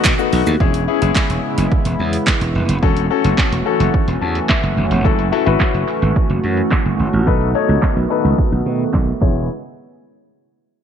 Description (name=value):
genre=dance-pop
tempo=108 BPM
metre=4/4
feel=straight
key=E major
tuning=A4 = 439 Hz
part: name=clear baby grand piano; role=accompaniment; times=0.0-9.5 s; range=A3 to A5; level=-20 LUFS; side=left 13 dB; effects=sidechain pumping
part: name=chorused pulse-width pad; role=sustained chords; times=0.0-9.5 s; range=C#3 to F#4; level=-22 LUFS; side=right 2 dB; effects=sidechain pumping
part: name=punchy analog drum machine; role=drums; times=0.0-9.3 s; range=crash cymbal, handclaps, hi-hat, kick drum, shaker, snare drum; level=-17 LUFS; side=right 1 dB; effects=none
part: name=group handclap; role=percussion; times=0.0-0.2, 5.6-9.5 s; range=none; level=-31 LUFS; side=right 16 dB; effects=none
part: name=glassy slap bass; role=bass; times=0.1-9.5 s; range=E1 to B2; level=-18 LUFS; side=right 1 dB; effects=sidechain pumping
room=little or no reverb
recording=1960s-style stereo with parts hard left and right, low-pass filter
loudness=-14 LUFS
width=side -8 dB against mid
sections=0.6-9.5 A section; 9.5-10.8 B section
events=filter sweep 0.6-9.5; grand piano fill 3.9-5.0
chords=0.0 B7; 0.6 E6; 2.8 A6/E; 5.0 F#m7; 7.3 B7; 9.2 E6; 9.5 N.C.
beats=0.05 | 0.60 1.16 1.71 2.27 | 2.83 3.38 3.94 4.49 | 5.05 5.60 6.16 6.71 | 7.27 7.83 8.38 8.94